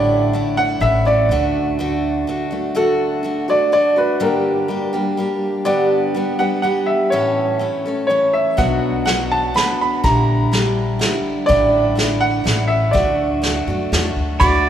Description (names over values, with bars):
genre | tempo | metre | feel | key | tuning
acoustic folk duo or small band | 124 BPM | 3/4 | straight | D major | A4 = 440 Hz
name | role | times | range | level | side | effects
bright upright piano | melody | 0.0-14.7 s | A4 to B5 | -18 LUFS | right 1 dB | none
picked steel-string acoustic guitar | accompaniment | 0.0-14.7 s | G2 to A4 | -20 LUFS | equal | none
upright bass | bass | 0.0-2.2, 8.6-14.7 s | A1 to F#2 | -22 LUFS | equal | none
soft brush drum kit | drums | 8.6-14.5 s | hi-hat, kick drum, ride cymbal, snare drum | -22 LUFS | equal | none
pedal steel guitar | second line | 14.4-14.7 s | D5 | -17 LUFS | right 5 dB | none
room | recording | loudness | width
wet church reverb, RT60 3.5 s | recorded in a church or concert hall | -15 LUFS | side -10 dB against mid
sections
0.0-2.8 A section; 2.8-14.4 A section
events
none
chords
0.0 Asus4; 0.8 A; 1.3 D; 4.2 Gm; 5.7 G; 7.1 A; 8.6 Bm; 10.0 Gm6/Bb; 11.5 Asus4; 12.5 A; 12.9 D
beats
0.35 0.83 | 1.31 1.80 2.28 | 2.77 3.25 3.73 | 4.22 4.70 5.18 | 5.67 6.15 6.64 | 7.12 7.61 8.09 | 8.58 9.06 9.55 | 10.03 10.52 11.01 | 11.49 11.98 12.46 | 12.95 13.43 13.92 | 14.40